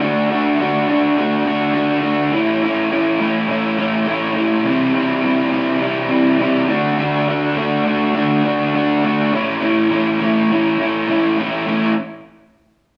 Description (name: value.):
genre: rock.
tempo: 103 BPM.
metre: 4/4.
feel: straight.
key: A mixolydian.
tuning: A4 = 440 Hz.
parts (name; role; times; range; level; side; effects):
raw garage guitar; solo; 0.0-11.9 s; A2 to F#4; -17 LUFS; equal; overdrive.
room: moderate large studio reverb, RT60 1.2 s.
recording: band playing live in one room.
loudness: -17 LUFS.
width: mono.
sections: 0.0-11.7 A section; 11.7-13.0 B section.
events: none.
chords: 0.0 D; 2.3 A; 4.7 C; 6.7 D; 9.3 A.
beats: | 0.02 0.60 1.18 1.76 | 2.34 2.92 3.50 4.09 | 4.67 5.25 5.83 6.42 | 7.00 7.58 8.17 8.75 | 9.34 9.92 10.51 11.10 | 11.68.